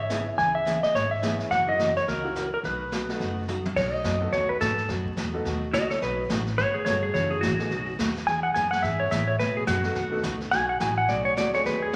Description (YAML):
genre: country, western swing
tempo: 213 BPM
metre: 4/4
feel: swing 59% on 8ths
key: B mixolydian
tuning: A4 = 440 Hz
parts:
  - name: clean lap steel guitar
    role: melody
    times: 0.0-3.5 s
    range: A#4 to G#5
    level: -27 LUFS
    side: equal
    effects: none
  - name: upright bass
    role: bass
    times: 0.0-12.0 s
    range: F#1 to B2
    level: -35 LUFS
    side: equal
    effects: none
  - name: clear upright piano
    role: accompaniment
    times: 0.1-7.7, 9.8-11.9 s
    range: A3 to A4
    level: -38 LUFS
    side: equal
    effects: none
  - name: picked steel-string acoustic guitar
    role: accompaniment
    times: 0.1-12.0 s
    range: B2 to G#4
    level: -36 LUFS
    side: equal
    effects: none
  - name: jazz brush drum kit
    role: drums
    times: 0.1-12.0 s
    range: brushed snare drum, crash cymbal, hi-hat, kick drum, snare drum, toms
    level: -35 LUFS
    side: equal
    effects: none
  - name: clean lap steel guitar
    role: second line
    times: 3.8-11.9 s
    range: F#4 to G#5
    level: -28 LUFS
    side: equal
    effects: none
room: wet large studio reverb, RT60 1.5 s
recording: vinyl crackle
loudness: -26 LUFS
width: mono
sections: 0.0-3.8 A section; 3.8-12.0 B section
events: drum fill 3.5; electric slide guitar solo 3.8-12.0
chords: 0.0 C#m7; 1.5 F#7; 2.6 B7; 7.1 F#m7; 7.7 B7; 8.3 E7; 9.4 B7